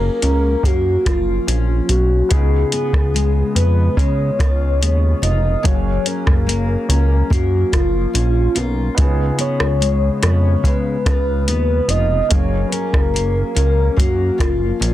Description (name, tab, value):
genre	indie pop, bedroom pop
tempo	72 BPM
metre	4/4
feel	straight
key	F# major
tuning	A4 = 440 Hz
part	soft octave-layered synth lead	melody	0.0-14.9 s	E#4 to D#5	-21 LUFS	equal	phaser, analog chorus, digital delay
part	fingerpicked steel-string acoustic guitar	accompaniment	0.0-14.9 s	C#3 to E#4	-24 LUFS	left 4 dB	wide subtle chorus, warbly pitch drift
part	warm upright piano	accompaniment	0.0-14.9 s	A#3 to E#5	-32 LUFS	right 5 dB	cassette tape
part	chorused synth bass	bass	0.0-14.9 s	E#1 to C#3	-17 LUFS	equal	none
part	soft vintage rhythm box	drums	0.2-14.9 s	hi-hat, kick drum, rim click	-18 LUFS	equal	none
room	light reverb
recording	dense, heavily limited modern master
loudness	-14 LUFS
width	side -14 dB against mid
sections	0.0-14.9 A section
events	none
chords	0.0 F#maj7; 2.3 C#7; 5.6 F#maj7; 9.0 C#7; 12.3 F#maj7